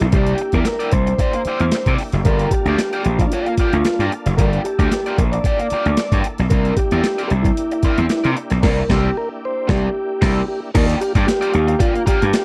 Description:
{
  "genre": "funk",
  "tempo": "113 BPM",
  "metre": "4/4",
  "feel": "straight",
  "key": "unclear",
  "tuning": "A4 = 439 Hz",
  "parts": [
    { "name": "mellow tonewheel organ", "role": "melody", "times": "0.0-12.4 s", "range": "D4 to D5", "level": "-24 LUFS", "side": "equal", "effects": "slow rotary speaker" },
    { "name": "crunchy overdriven guitar", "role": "accompaniment", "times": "0.0-12.4 s", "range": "Bb3 to D5", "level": "-28 LUFS", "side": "equal", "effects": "wah" },
    { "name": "tonewheel organ", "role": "sustained chords", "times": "0.0-12.4 s", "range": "Bb3 to A4", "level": "-34 LUFS", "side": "equal", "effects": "none" },
    { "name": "gritty slap bass", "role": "bass", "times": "0.0-12.3 s", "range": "F#1 to C3", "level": "-20 LUFS", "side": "equal", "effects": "overdrive" },
    { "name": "breakbeat sampler-style drum kit", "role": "drums", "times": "0.0-12.4 s", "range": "crash cymbal, hi-hat, kick drum, snare drum", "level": "-22 LUFS", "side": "equal", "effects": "none" }
  ],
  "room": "little or no reverb",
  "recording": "dry, close 1970s-style studio recording",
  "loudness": "-18 LUFS",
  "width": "mono",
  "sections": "0.0-10.7 A section; 10.7-12.4 B section",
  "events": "band accent 8.6-10.7",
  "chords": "0.0 C9; 2.3 Gm7; 6.5 C9; 10.7 Ebmaj9"
}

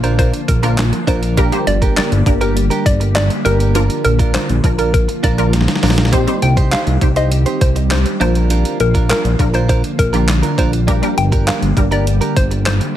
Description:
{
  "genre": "dance-pop",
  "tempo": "101 BPM",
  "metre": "4/4",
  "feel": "straight",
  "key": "unclear",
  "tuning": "A4 = 439 Hz",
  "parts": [
    { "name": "hollow square pluck", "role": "melody", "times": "0.0-12.8 s", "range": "Bb4 to G5", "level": "-21 LUFS", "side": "left 2 dB", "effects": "chorus, sidechain pumping, digital delay" },
    { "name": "wide unison pluck", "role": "accompaniment", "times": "0.0-12.5 s", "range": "F3 to C5", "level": "-22 LUFS", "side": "left 1 dB", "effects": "ensemble chorus, sidechain pumping" },
    { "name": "glassy FM pad", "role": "sustained chords", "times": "0.0-13.0 s", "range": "D3 to G4", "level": "-23 LUFS", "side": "equal", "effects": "ensemble chorus, built-in reverb, sidechain pumping" },
    { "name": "direct-recorded clean electric guitar", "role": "riff", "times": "0.0-12.8 s", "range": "D4 to C5", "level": "-23 LUFS", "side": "right 6 dB", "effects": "lush chorus" },
    { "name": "fat analog bass", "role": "bass", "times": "0.0-12.8 s", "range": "G1 to C2", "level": "-16 LUFS", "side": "equal", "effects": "sidechain pumping" },
    { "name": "clean 12-bit digital drum machine", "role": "drums", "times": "0.0-12.9 s", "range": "handclaps, hi-hat, kick drum, snare drum", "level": "-18 LUFS", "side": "equal", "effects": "none" }
  ],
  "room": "digital ambience",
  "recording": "none",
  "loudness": "-12 LUFS",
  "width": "side -12 dB against mid",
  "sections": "0.0-13.0 A section",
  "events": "drum fill 5.5-6.1",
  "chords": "0.0 Bb; 1.4 Gm; 3.8 Bb; 6.1 Cm; 8.2 Bb; 10.9 Gm"
}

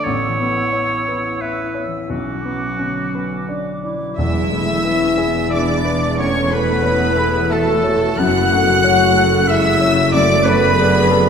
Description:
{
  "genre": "cinematic, emotional film score for orchestra",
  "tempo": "86-93 BPM",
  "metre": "3/4",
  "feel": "rubato",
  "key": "A major",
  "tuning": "A4 = 440 Hz",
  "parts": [
    { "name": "clear oboe", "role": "second line", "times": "0.0-11.1 s", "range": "F#4 to F#5", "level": "-22 LUFS", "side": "right 1 dB", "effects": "none" },
    { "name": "small flute group", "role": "second line", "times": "0.0-11.3 s", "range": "A4 to E6", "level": "-24 LUFS", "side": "right 1 dB", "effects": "none" },
    { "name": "warm clarinet", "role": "second line", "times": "0.0-11.2 s", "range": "B3 to F#5", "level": "-25 LUFS", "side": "right 1 dB", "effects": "none" },
    { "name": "clear grand piano", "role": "accompaniment", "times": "0.0-11.3 s", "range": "A1 to E5", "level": "-24 LUFS", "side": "left 1 dB", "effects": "none" },
    { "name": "concert harp", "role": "arpeggios", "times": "0.0-11.3 s", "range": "E2 to E5", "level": "-24 LUFS", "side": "left 4 dB", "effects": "none" },
    { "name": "rich studio violin section", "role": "melody", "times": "4.2-11.3 s", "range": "A5 to F#6", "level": "-24 LUFS", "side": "equal", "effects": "none" },
    { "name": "rich studio violin section", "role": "second line", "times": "4.2-11.3 s", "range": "A4 to F#5", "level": "-26 LUFS", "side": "left 2 dB", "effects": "none" },
    { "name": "rich studio viola section", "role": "accompaniment", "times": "4.2-11.3 s", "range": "C#3 to G#4", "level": "-24 LUFS", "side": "right 1 dB", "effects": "none" },
    { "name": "warm French horn section", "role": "sustained chords", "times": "4.2-11.3 s", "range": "A3 to D5", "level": "-21 LUFS", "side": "left 4 dB", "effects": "none" },
    { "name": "rich studio cello section", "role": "bass", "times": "4.2-11.3 s", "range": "E2 to F#2", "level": "-25 LUFS", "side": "right 4 dB", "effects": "none" },
    { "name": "rich studio double bass section", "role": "bass", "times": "4.2-11.3 s", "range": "E1 to F#1", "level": "-24 LUFS", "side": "right 4 dB", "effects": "none" },
    { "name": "timpani", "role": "percussion", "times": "4.2-5.2 s", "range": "E2", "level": "-24 LUFS", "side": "right 1 dB", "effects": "none" }
  ],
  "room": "wet scoring stage reverb, RT60 1.6 s",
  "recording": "none",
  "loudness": "-14 LUFS",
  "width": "side -6 dB against mid",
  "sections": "0.0-4.2 A section; 4.2-11.3 A section",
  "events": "none",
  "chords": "0.1 Aadd9; 2.1 Bmadd9; 4.2 E; 6.2 Aadd9/E; 8.2 F#m7; 10.1 D/F#"
}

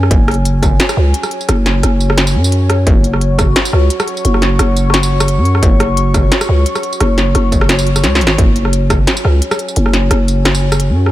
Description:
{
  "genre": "half-time drum and bass",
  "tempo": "174 BPM",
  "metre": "4/4",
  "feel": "swing 55% on 16ths, half-time",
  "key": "unclear",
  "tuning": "A4 = 440 Hz",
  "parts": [
    { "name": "dark analog pad", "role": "sustained chords", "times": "0.0-11.1 s", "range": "F#4 to C#6", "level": "-20 LUFS", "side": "left 1 dB", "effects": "chorus, phaser, sidechain pumping" },
    { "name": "growling 808-style bass", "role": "bass", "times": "0.0-11.1 s", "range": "F#1 to F#2", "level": "-12 LUFS", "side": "equal", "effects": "tube saturation" },
    { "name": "industrial drum kit", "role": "drums", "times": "0.0-11.1 s", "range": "hi-hat, rim click, snare drum, tambourine", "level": "-16 LUFS", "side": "equal", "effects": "none" },
    { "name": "electronic kick drum", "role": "drums", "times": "0.1-0.7, 2.9-3.5, 5.6-9.0 s", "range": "none", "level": "-13 LUFS", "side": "equal", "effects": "distortion" }
  ],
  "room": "light reverb",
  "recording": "none",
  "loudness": "-10 LUFS",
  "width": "side -14 dB against mid",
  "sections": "0.0-11.1 A section",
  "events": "kick drops out 8.0-8.4; drum fill 8.0-8.4",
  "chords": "0.0 F#sus2"
}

